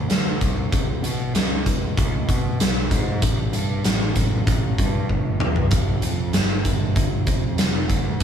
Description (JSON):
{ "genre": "quiet-loud alternative rock", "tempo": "96 BPM", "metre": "4/4", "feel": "straight", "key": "unclear", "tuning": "A4 = 440 Hz", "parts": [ { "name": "fuzz picked electric bass", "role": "bass", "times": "0.0-8.2 s", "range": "F1 to B2", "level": "-24 LUFS", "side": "equal", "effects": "overdrive" }, { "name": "oversized low-tuned drum kit", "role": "drums", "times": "0.1-8.2 s", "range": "hi-hat, kick drum, snare drum, toms", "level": "-21 LUFS", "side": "equal", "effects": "none" } ], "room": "light reverb", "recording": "small room ambience", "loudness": "-19 LUFS", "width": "side -8 dB against mid", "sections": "0.0-8.2 A section", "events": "drum fill 5.1-5.7", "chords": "none", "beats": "0.10 | 0.72 1.35 1.97 2.60 | 3.22 3.84 4.47 5.09 | 5.71 6.34 6.96 7.58 | 8.21" }